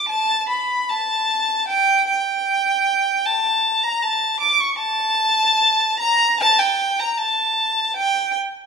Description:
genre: classical, baroque-style suite movement for unaccompanied violin.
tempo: 77 BPM.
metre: 4/4.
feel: rubato.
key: unclear.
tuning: A4 = 440 Hz.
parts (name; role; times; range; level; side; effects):
warm violin; solo; 0.0-8.3 s; G5 to D6; -16 LUFS; equal; none.
room: moderate recital hall reverb, RT60 1.5 s.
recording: minimal, uncompressed stereo recording.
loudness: -16 LUFS.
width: side -5 dB against mid.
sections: 0.0-8.7 A section.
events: none.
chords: none.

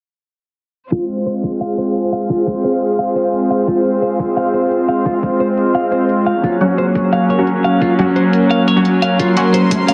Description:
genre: dark technical drum and bass.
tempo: 174 BPM.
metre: 4/4.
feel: straight.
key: F phrygian.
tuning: A4 = 440 Hz.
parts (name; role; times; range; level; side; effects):
rich studio string section; sustained chords; 0.9-9.9 s; Gb3 to C6; -20 LUFS; equal; sidechain pumping, low-pass filter.
clean electric guitar; arpeggios; 0.9-9.9 s; F4 to F5; -22 LUFS; equal; sidechain pumping, low-pass filter, tape echo.
electronic hi-hat; drums; 0.9-9.9 s; none; -31 LUFS; equal; overdrive.
electronic kick drum; drums; 0.9-9.8 s; none; -24 LUFS; equal; overdrive, high-pass filter on kick, high-pass filter on room.
airy breathy pad; texture; 0.9-9.9 s; Gb3 to F5; -20 LUFS; equal; chorus, sidechain pumping.
orchestra-hit-like synth stab; stabs; 6.6-9.4 s; Gb3 to Gb4; -20 LUFS; equal; built-in reverb, tape echo.
riser; sound effects; 9.7-9.9 s; none; -27 LUFS; equal; none.
room: moderate digital room reverb, RT60 1.1 s, digital ambience.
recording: heavily compressed radio sound, low-pass filter.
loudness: -15 LUFS.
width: mono.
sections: 0.9-9.9 A section.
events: filter sweep on string section 0.9-9.9; filter sweep on clean electric guitar 0.9-9.9; filter sweep 0.9-9.9.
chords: 0.9 Fm; 6.4 Gb.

